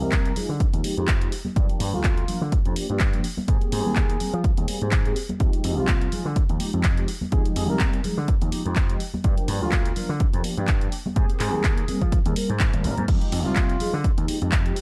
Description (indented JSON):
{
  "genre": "filtered disco house",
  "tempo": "125 BPM",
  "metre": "4/4",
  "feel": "swing 56% on 16ths",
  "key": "F dorian",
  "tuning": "A4 = 440 Hz",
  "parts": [
    { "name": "clear horn section", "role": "melody", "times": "0.0-13.9 s", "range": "F4 to Bb4", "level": "-35 LUFS", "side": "equal", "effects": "vintage 12-bit sampler grit, sidechain pumping, low-pass filter" },
    { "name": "mellow synth brass", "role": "accompaniment", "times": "0.0-14.8 s", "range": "F3 to Bb4", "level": "-32 LUFS", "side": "equal", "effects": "chorus, phaser, sidechain pumping, low-pass filter" },
    { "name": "gritty slap bass", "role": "bass", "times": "0.0-14.7 s", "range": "Ab1 to F3", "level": "-30 LUFS", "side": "equal", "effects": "overdrive, sidechain pumping, low-pass filter" },
    { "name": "maracas and congas", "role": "percussion", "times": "0.0-14.8 s", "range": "none", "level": "-36 LUFS", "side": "equal", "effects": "none" },
    { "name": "electronic kick drum", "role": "drums", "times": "0.1-14.6 s", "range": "none", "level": "-25 LUFS", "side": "equal", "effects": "none" },
    { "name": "punchy analog drum machine", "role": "drums", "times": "0.1-14.8 s", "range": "crash cymbal, handclaps, hi-hat", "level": "-33 LUFS", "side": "equal", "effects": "sidechain pumping on hats, sidechain pumping on cymbals" }
  ],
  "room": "little or no reverb",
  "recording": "dark, warm production",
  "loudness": "-23 LUFS",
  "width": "mono",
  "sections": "0.0-14.8 A section",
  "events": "filter sweep 0.0-14.8",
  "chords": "0.0 Fm9; 1.6 Gm7; 3.5 Abmaj9; 5.4 Fm9; 9.2 Gm7; 11.2 Abmaj9; 13.1 Fm9",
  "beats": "0.12 0.60 1.08 | 1.56 2.04 2.52 3.00 | 3.48 3.96 4.44 4.92 | 5.40 5.88 6.36 6.84 | 7.32 7.80 8.28 8.76 | 9.24 9.72 10.20 10.68 | 11.16 11.64 12.12 12.60 | 13.08 13.56 14.04 14.52"
}